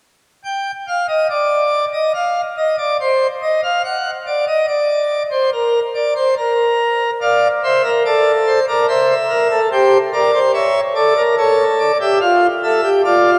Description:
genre	classical, baroque-style 4-part fugue for pipe organ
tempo	72 BPM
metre	4/4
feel	straight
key	unclear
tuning	A4 = 442 Hz
part	pipe organ, plenum	solo	0.4-13.4 s	F4 to G5	-16 LUFS	equal	none
room	wet church reverb, RT60 3.4 s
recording	dark, warm production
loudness	-16 LUFS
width	mono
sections	0.5-13.4 A section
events	none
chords	0.5 N.C.; 7.2 Dm; 8.9 C; 10.5 A7; 12.2 Dm/F

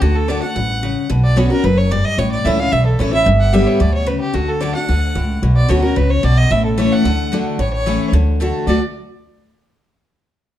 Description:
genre	bluegrass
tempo	222 BPM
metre	4/4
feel	straight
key	D major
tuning	A4 = 441 Hz
part	clear fiddle	melody	0.0-8.8 s	F#4 to F#5	-20 LUFS	right 1 dB	plate reverb
part	picked steel-string acoustic guitar	accompaniment	0.0-8.8 s	E2 to G4	-18 LUFS	left 2 dB	none
part	upright bass	bass	0.0-8.8 s	F#1 to D2	-16 LUFS	equal	none
room	moderate studio reverb, RT60 0.9 s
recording	dark, warm production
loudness	-14 LUFS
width	side -12 dB against mid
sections	0.0-7.6 A section; 7.6-8.7 B section; 8.7-9.8 C section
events	none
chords	0.0 D; 1.1 Bmadd9; 2.2 A; 3.3 G; 4.3 D; 5.4 Bmadd9; 6.5 A; 7.0 D; 7.6 A; 8.1 D; 8.7 D5

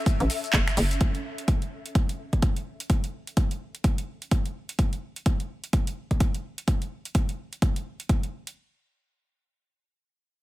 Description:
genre	bass house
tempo	127 BPM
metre	4/4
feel	swing 60% on 16ths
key	F# minor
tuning	A4 = 441 Hz
part	granular cloud pad	texture	0.0-1.0 s	C#4 to E5	-37 LUFS	left 2 dB	built-in reverb, sidechain pumping
part	electronic kick drum	drums	0.1-8.2 s	none	-23 LUFS	equal	none
part	house drum kit	drums	0.1-8.5 s	finger snaps, handclaps, hi-hat, shaker	-32 LUFS	right 1 dB	none
part	hollow knocking FM bass	bass	0.2-1.0 s	F#1 to A1	-24 LUFS	equal	sidechain pumping
room	little or no reverb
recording	none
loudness	-25 LUFS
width	side -17 dB against mid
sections	0.0-8.6 A section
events	filter sweep on FM bass 0.0-1.0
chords	0.0 F#m

